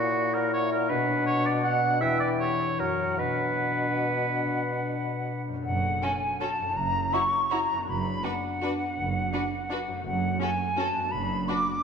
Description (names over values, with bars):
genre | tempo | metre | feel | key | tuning
classical | 138-178 BPM | 3/4 | rubato | B minor, F# minor from 5.7 s | A4 = 438 Hz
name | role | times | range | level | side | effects
dark clarinet | second line | 0.0-5.4 s | D4 to E4 | -33 LUFS | left 4 dB | none
silver concert flute | second line | 0.0-11.8 s | F#5 to D6 | -30 LUFS | left 1 dB | none
warm oboe | second line | 0.0-5.5 s | F#4 to F#5 | -28 LUFS | right 2 dB | none
mellow bassoon | accompaniment | 0.0-5.5 s | A#2 to F#3 | -31 LUFS | right 1 dB | none
concert harp | arpeggios | 0.0-11.8 s | E2 to E5 | -34 LUFS | left 4 dB | none
clear studio cello section | bass | 5.7-11.4 s | F#2 | -34 LUFS | right 6 dB | none
rich studio double bass section | bass | 5.7-11.4 s | F#1 | -35 LUFS | right 5 dB | none
clear chamber violin section | melody | 6.0-11.6 s | A4 to C#5 | -41 LUFS | left 3 dB | none
rich chamber violin section | second line | 6.0-11.6 s | F#4 | -40 LUFS | left 3 dB | none
rich studio viola section | accompaniment | 6.0-11.6 s | C#4 to E4 | -37 LUFS | right 2 dB | none
room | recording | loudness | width
wet scoring stage reverb, RT60 2.1 s | minimal, uncompressed stereo recording | -25 LUFS | side -6 dB against mid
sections
0.0-5.7 A section; 5.7-11.8 B section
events
none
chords
0.0 F#7/A#; 0.9 Bm; 2.0 C#dim/E; 2.8 F#7; 3.2 Bm; 5.7 F#m; 6.8 F#7; 7.9 Bm/F#